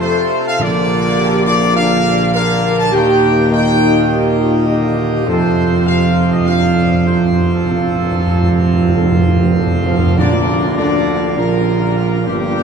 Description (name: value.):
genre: classical, ceremonial fanfare.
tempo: 101 BPM.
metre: 4/4.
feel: straight.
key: Bb major.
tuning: A4 = 439 Hz.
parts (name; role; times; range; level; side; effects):
clear trumpet section; melody; 0.0-12.6 s; G4 to A5; -20 LUFS; left 2 dB; none.
bright trombone section; sustained chords; 0.0-12.6 s; G2 to Bb3; -22 LUFS; right 2 dB; none.
dark French horn section; sustained chords; 0.0-12.6 s; G3 to Bb4; -19 LUFS; left 1 dB; none.
pipe organ, full organ; sustained chords; 0.0-12.6 s; Bb2 to Eb5; -19 LUFS; right 3 dB; none.
dark tuba; bass; 0.0-12.6 s; G1 to F2; -17 LUFS; right 2 dB; none.
timpani; percussion; 0.6-1.4, 5.3-11.0 s; F2 to Bb2; -19 LUFS; equal; none.
cymbal swell and tam-tam; percussion; 7.7-12.5 s; none; -28 LUFS; left 2 dB; none.
room: wet cathedral reverb, RT60 5.8 s.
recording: in a vast, echoing space.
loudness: -12 LUFS.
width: side -6 dB against mid.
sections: 0.0-10.2 A section; 10.2-12.6 B section.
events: timpani fill 5.3-10.2; band accent 10.2-10.8.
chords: 0.0 F; 0.6 Bb; 2.9 Eb; 5.3 F; 10.2 Bb/D.